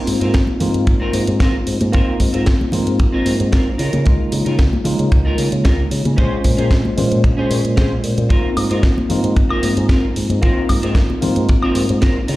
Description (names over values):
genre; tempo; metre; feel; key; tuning
nu-disco, nu disco; 113 BPM; 4/4; straight; Ab major; A4 = 440 Hz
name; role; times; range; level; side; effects
tine electric piano; accompaniment; 0.0-12.3 s; Ab3 to C5; -20 LUFS; equal; medium stereo tremolo, sidechain pumping, analog delay
fingered electric bass with an envelope filter; bass; 0.1-12.4 s; Ab1 to Db3; -19 LUFS; equal; none
house drum kit; drums; 0.1-12.4 s; hi-hat, snare drum, woodblock; -26 LUFS; equal; overdrive
clean electric guitar; riff; 0.2-12.4 s; C4 to C5; -24 LUFS; equal; analog chorus, analog delay
kick drum; drums; 0.3-12.1 s; none; -16 LUFS; equal; none
congas; percussion; 0.5-11.9 s; none; -24 LUFS; left 1 dB; none
room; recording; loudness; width
small room ambience; played on a big sound system in a bare room, stone room reverb; -14 LUFS; side -17 dB against mid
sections
0.0-12.4 A section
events
none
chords
0.0 Ab69; 3.8 Db69; 6.2 Bbm9; 8.3 Ab69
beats
0.34 0.87 1.40 | 1.93 2.46 3.00 3.53 | 4.06 4.59 5.12 5.65 | 6.18 6.71 7.24 7.77 | 8.30 8.84 9.37 9.90 | 10.43 10.96 11.49 12.02